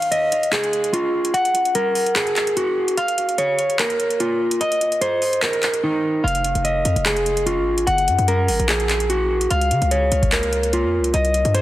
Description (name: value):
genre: hip hop, trap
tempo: 147 BPM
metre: 4/4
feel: half-time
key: F minor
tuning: A4 = 440 Hz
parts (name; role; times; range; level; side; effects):
- electric guitar at the edge of break-up; arpeggios; 0.0-11.6 s; Eb4 to Gb5; -18 LUFS; equal; digital delay
- booming analog drum machine; drums; 0.0-11.6 s; handclaps, hi-hat, kick drum; -24 LUFS; equal; overdrive
- hard-hitting 808-style bass; bass; 6.2-11.6 s; F1 to Db3; -22 LUFS; left 1 dB; none
room: light reverb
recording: heavily compressed radio sound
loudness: -17 LUFS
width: side -14 dB against mid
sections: 0.0-11.6 A section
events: break 0.0-6.2; silent gap 5.8-6.2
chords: 0.0 Fm7; 1.3 Gbadd9; 3.0 Db6; 4.6 Cm7; 6.2 Fm7; 7.9 Gbadd9; 9.5 Db6